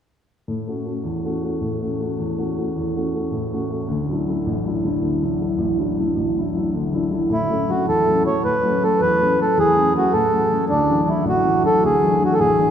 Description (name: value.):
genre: celtic folk.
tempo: 106 BPM (dotted quarters).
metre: 9/8.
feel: straight.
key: A major.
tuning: A4 = 440 Hz.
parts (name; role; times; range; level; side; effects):
dark grand piano; accompaniment; 0.5-12.7 s; A1 to F#4; -21 LUFS; left 1 dB; none.
mellow accordion; melody; 7.3-12.7 s; D4 to C#5; -17 LUFS; right 1 dB; none.
room: wet cathedral reverb, RT60 4.6 s.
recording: recorded in a church or concert hall.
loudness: -18 LUFS.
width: side -8 dB against mid.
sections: 0.5-7.3 A section; 7.3-12.7 B section.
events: none.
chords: 0.5 A6; 3.9 Dadd9; 7.3 A6; 10.7 Dadd9.